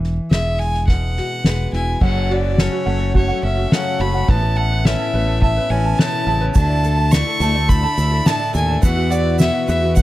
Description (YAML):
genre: indie folk with a building arrangement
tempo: 106 BPM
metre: 4/4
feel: straight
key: unclear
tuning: A4 = 440 Hz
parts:
  - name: fingerpicked steel-string acoustic guitar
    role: accompaniment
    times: 0.0-10.0 s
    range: A2 to B4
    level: -25 LUFS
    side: left 2 dB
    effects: none
  - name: fingered electric bass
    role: bass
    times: 0.0-10.0 s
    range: E1 to E2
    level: -19 LUFS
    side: equal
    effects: none
  - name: soft-mallet drum kit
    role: drums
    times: 0.0-10.0 s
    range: crash cymbal, kick drum, snare drum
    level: -16 LUFS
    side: equal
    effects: none
  - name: clear fiddle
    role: melody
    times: 0.3-10.0 s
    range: C#5 to C#6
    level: -22 LUFS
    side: right 1 dB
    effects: none
  - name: picked plugged-in twelve-string acoustic guitar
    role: accompaniment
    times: 2.0-10.0 s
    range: E2 to F#4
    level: -26 LUFS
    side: left 5 dB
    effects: none
  - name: ukulele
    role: arpeggios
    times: 2.0-10.0 s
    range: F#4 to A5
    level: -27 LUFS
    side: right 7 dB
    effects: none
  - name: egg shaker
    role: percussion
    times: 6.5-10.0 s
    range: none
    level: -35 LUFS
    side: right 16 dB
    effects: none
room: studio ambience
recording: dry, close 1970s-style studio recording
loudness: -15 LUFS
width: side -15 dB against mid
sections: 0.0-2.0 A section; 2.0-10.0 B section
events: none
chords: 0.0 Eadd9; 2.0 F#m; 4.3 Aadd9; 6.6 Dsus2; 8.8 Esus2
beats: 0.31 0.88 1.45 | 2.01 2.58 3.15 3.72 | 4.28 4.85 5.42 5.99 | 6.56 7.12 7.69 8.26 | 8.83 9.40 9.97